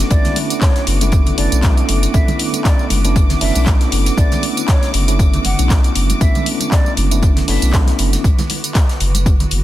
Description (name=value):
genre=deep house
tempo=118 BPM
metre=4/4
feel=swing 56% on 16ths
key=B minor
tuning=A4 = 440 Hz
part: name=deep dark ambient pad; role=sustained chords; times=0.0-9.6 s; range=D3 to E5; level=-31 LUFS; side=right 2 dB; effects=chorus, built-in reverb, sidechain pumping
part: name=tine electric piano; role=stabs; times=0.0-8.2 s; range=A3 to E4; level=-22 LUFS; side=equal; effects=medium stereo tremolo, sidechain pumping, dub echo
part: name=warm sub bass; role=bass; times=0.0-9.6 s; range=F#1 to B1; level=-17 LUFS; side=equal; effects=tube saturation, sidechain pumping
part: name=deep house drum kit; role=drums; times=0.0-9.6 s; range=handclaps, hi-hat, tambourine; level=-22 LUFS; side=equal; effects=none
part: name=analog string pad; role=texture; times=0.0-9.6 s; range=D6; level=-30 LUFS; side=right 2 dB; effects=ensemble chorus, sidechain pumping
part: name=bright studio string section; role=texture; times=0.0-9.6 s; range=B3 to D6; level=-30 LUFS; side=equal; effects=sidechain pumping
part: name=mellow hollow jazz flute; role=melody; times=0.1-7.8 s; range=C#5 to F#5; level=-28 LUFS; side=right 2 dB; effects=dub echo
part: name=damped 70s drum kit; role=drums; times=0.1-9.6 s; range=hi-hat, snare drum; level=-30 LUFS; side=left 4 dB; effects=high-pass filter on hats, high-pass filter on snare, high-pass filter on room
part: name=electronic kick drum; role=drums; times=0.1-9.4 s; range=none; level=-14 LUFS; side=equal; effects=none
part: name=congas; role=percussion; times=0.2-9.5 s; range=none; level=-26 LUFS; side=right 3 dB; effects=sidechain pumping on perc
room=small room ambience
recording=dense, heavily limited modern master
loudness=-12 LUFS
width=side -14 dB against mid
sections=0.0-9.6 A section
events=none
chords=0.0 Bm11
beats=| 0.11 0.62 1.12 1.63 | 2.14 2.65 3.16 3.67 | 4.17 4.68 5.19 5.70 | 6.21 6.72 7.23 7.74 | 8.24 8.75 9.26